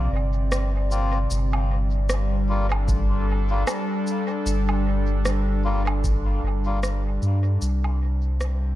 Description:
ambient dub; 76 BPM; 4/4; swing 57% on 16ths; G minor; A4 = 439 Hz
warbly tape-like pad; sustained chords; 0.0-8.8 s; C3 to D5; -28 LUFS; left 1 dB; chorus, built-in reverb
warm sub bass; bass; 0.0-8.8 s; G1 to G2; -22 LUFS; equal
electronic rim click, shaker and woodblock; drums; 0.5-8.6 s; -32 LUFS; right 1 dB; overdrive, studio reverb, dub echo
melodica; stabs; 0.9-6.8 s; G3 to F4; -33 LUFS; left 3 dB; dub echo
electronic kick drum; drums; 2.9-6.2 s; -27 LUFS; equal
digital ambience; dark, warm production; -21 LUFS; side -14 dB against mid
0.0-8.8 A section
fade-out 5.5-8.8
0.0 C7sus4; 1.3 G5; 7.6 N.C.

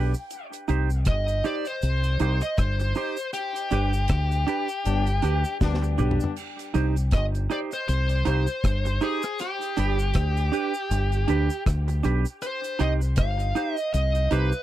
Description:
roots reggae; 79 BPM; 4/4; swing 58% on 16ths; C harmonic minor; A4 = 441 Hz
semi-hollow electric guitar; accompaniment; 0.0-14.5 s; D4 to C5; -29 LUFS; right 8 dB; lush chorus, dub echo
deep dub fingered electric bass; bass; 0.0-14.5 s; G1 to D2; -23 LUFS; equal
cabasa; percussion; 0.1-14.6 s; -46 LUFS; right 5 dB
deep reggae drum kit; drums; 0.3-14.5 s; crash cymbal, hi-hat, kick drum, rim click, snare drum, toms; -27 LUFS; equal
smooth overdriven lead guitar; melody; 1.1-14.6 s; G4 to F5; -29 LUFS; left 1 dB; dub echo
clear horn section; second line; 4.9-6.3 s; G3 to D4; -32 LUFS; left 7 dB; dub echo
little or no reverb; dry, close 1970s-style studio recording; -22 LUFS; side -13 dB against mid
0.0-6.4 A section; 6.4-14.6 A section
band accent 3.3-6.4; drum fill 5.6-6.4
0.3 Cm; 3.3 G; 6.4 Cm; 9.4 G; 12.4 Cm

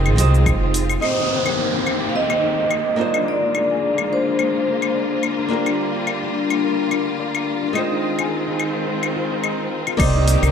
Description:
sunset chillout; 107 BPM; 4/4; swing 55% on 16ths; F dorian; A4 = 440 Hz
vibraphone with hard mallets; melody; 0.0-5.2 s; Ab4 to F5; -23 LUFS; equal; ping-pong delay
flamenco guitar; accompaniment; 0.0-10.5 s; Ab3 to G5; -25 LUFS; moving between left 1 dB and right 5 dB; auto-pan, ping-pong delay
clear studio string section; sustained chords; 0.0-10.5 s; D3 to G4; -25 LUFS; equal; low-pass filter
upright bass; bass; 0.0-1.0, 10.0-10.5 s; F1 to C2; -16 LUFS; right 1 dB
deep house drum kit; drums; 0.1-10.5 s; claves, crash cymbal, hi-hat, shaker; -26 LUFS; left 6 dB; overdrive
electronic kick drum; drums; 0.5-0.6, 10.0-10.1 s; -23 LUFS; equal; overdrive
downlifter; sound effects; 1.0-5.5 s; -26 LUFS; equal
wind-like tuned noise texture; texture; 2.3-10.5 s; Bb4 to F6; -33 LUFS; left 2 dB; built-in reverb
concert harp; arpeggios; 1.2-10.5 s; D4 to Eb5; -25 LUFS; left 8 dB; low-pass filter, ping-pong delay
light reverb, small room ambience; -17 LUFS; side -7 dB against mid
0.0-1.0 A section; 1.0-10.0 B section
filter sweep on string section 1.0-10.0; filter sweep on harp 1.0-10.0
0.0 Fm7; 1.0 Cm7; 3.0 Bb7; 5.5 Gm7; 7.8 Fm7; 10.0 Cm7

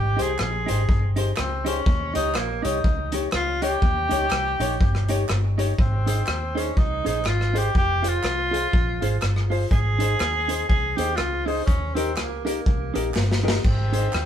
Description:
ska; 122 BPM; 4/4; swing 58% on 8ths; Ab major; A4 = 442 Hz
clear tenor saxophone; melody; 0.0-14.3 s; Bb3 to Ab4; -26 LUFS; equal
vintage muted fingered electric bass; bass; 0.0-14.3 s; F1 to Eb2; -25 LUFS; equal
clean electric guitar; accompaniment; 0.2-14.1 s; Eb4 to Db5; -31 LUFS; right 3 dB; dub echo
warm upright piano; stabs; 0.2-14.1 s; Eb4 to Db5; -31 LUFS; left 4 dB
raw garage drum kit; drums; 0.2-14.3 s; crash cymbal, hi-hat, kick drum, rim click, snare drum; -25 LUFS; equal
group handclap; percussion; 0.4-14.3 s; -38 LUFS; right 3 dB
light reverb; band playing live in one room; -20 LUFS; side -10 dB against mid
0.0-5.8 A section; 5.8-14.3 B section
drum fill 13.2-13.6
0.0 Abmaj7; 1.9 Eb7; 5.8 Ab; 7.8 Fm; 9.7 Ab; 11.7 Eb; 13.6 Ab

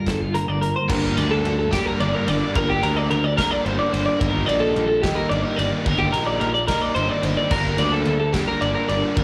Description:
math rock and midwest emo; 72 BPM (dotted quarters); 6/8; straight; G minor; A4 = 438 Hz
clean electric guitar; accompaniment; 0.0-2.6 s; G2 to A4; -30 LUFS; equal; tremolo
twelve-string electric guitar; arpeggios; 0.0-9.2 s; F4 to D5; -25 LUFS; equal; lush chorus, slapback echo
fuzz picked electric bass; bass; 0.1-9.2 s; G1 to D2; -26 LUFS; equal; overdrive
loose indie drum kit; drums; 0.1-9.2 s; crash cymbal, hi-hat, kick drum, ride cymbal, snare drum; -31 LUFS; equal
biting overdriven guitar; riff; 0.9-9.2 s; D3 to Eb4; -28 LUFS; equal; slapback echo
small room ambience; live gig heard through the venue's PA, club reverb; -21 LUFS; mono
0.9-9.2 A section
0.0 Gm9; 0.9 Gm; 4.2 Ebmaj7/G; 7.5 Gm

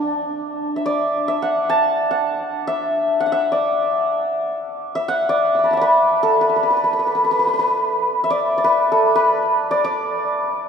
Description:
indian classical; free time; D raga bhupali; A4 = 440 Hz
santur; solo; 0.0-10.7 s; D4 to E6; -16 LUFS; equal
wet cathedral reverb, RT60 5.4 s; recorded in a church or concert hall; -16 LUFS; side -6 dB against mid
0.6-10.7 A section

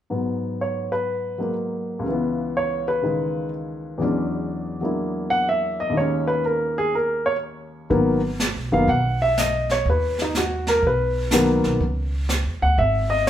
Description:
jazz piano trio; 123 BPM; 4/4; swing 66% on 8ths; G# minor; A4 = 440 Hz
warm baby grand piano; melody; 0.1-13.3 s; C#2 to F#5; -21 LUFS; equal
upright bass; bass; 7.9-13.3 s; F#1 to E2; -24 LUFS; right 1 dB
jazz brush drum kit; drums; 7.9-13.3 s; brushed snare drum, hi-hat, kick drum, snare drum; -27 LUFS; right 1 dB
wet large studio reverb, RT60 0.9 s; band playing live in one room; -20 LUFS; side -11 dB against mid
0.1-7.9 A section; 7.9-13.3 B section
0.1 G#m9; 2.1 C#m7; 4.0 E13; 6.0 D#7sus4; 7.9 G#m7; 11.8 C#m

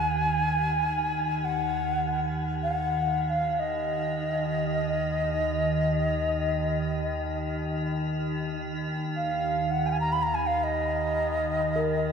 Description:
world meditative, free-time meditation music; free time; Eb minor; A4 = 440 Hz
xiao; melody; 0.0-12.1 s; Eb5 to Cb6; -27 LUFS; equal; shimmer reverb, diffuse ambient delay
icy glass pad; drone; 0.0-12.1 s; Eb2 to Eb3; -29 LUFS; right 1 dB; chorus, built-in reverb
quartz singing bowl; texture; 11.8-12.1 s; Bb4; -28 LUFS; right 3 dB; stereo widening
wet huge ambient reverb, RT60 7.4 s; dark, warm production; -25 LUFS; side -6 dB against mid
0.0-12.1 A section

